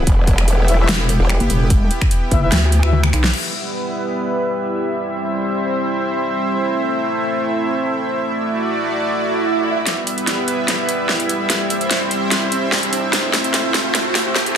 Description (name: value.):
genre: heavy wobble dubstep.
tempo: 147 BPM.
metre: 4/4.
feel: half-time.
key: E minor.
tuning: A4 = 444 Hz.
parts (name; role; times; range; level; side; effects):
supersaw pad; sustained chords; 0.0-14.6 s; G3 to E5; -20 LUFS; right 1 dB; sidechain pumping, low-pass filter.
growl bass; bass; 0.0-1.4 s; E1; -16 LUFS; equal; chorus, overdrive.
big-room dance drum kit; drums; 0.1-3.4, 9.9-14.5 s; crash cymbal, finger snaps, hi-hat, snare drum, toms; -20 LUFS; equal; overdrive, high-pass filter on snare, small room ambience, high-pass filter on hats, high-pass filter on toms, high-pass filter on cymbals.
electronic kick drum; drums; 0.1-2.4 s; none; -16 LUFS; equal; small room ambience.
mellow brass ensemble; stabs; 0.7-3.0 s; E4 to E5; -26 LUFS; left 4 dB; tape echo.
pulsing pluck wobble bass; bass; 0.9-3.3 s; E1 to D2; -16 LUFS; equal; chorus, overdrive.
swell and riser; sound effects; 9.2-14.6 s; none; -24 LUFS; right 3 dB; none.
room: light reverb.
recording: dense, heavily limited modern master, high-pass filter.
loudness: -16 LUFS.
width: side -8 dB against mid.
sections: 0.0-3.3 A section; 3.3-9.9 B section; 9.9-14.6 C section.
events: drop 0.0-3.3; drum fill 2.9-3.3, 9.9-14.6; band accent 3.2; filter sweep on supersaw synth 3.3-9.9; swell 9.2-9.9; build-up 9.9-14.6; riser 9.9-14.6.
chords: 0.0 E5; 3.3 Em; 5.0 C; 6.6 Am; 8.2 Dadd9; 9.9 Em; 11.5 C; 13.1 Am.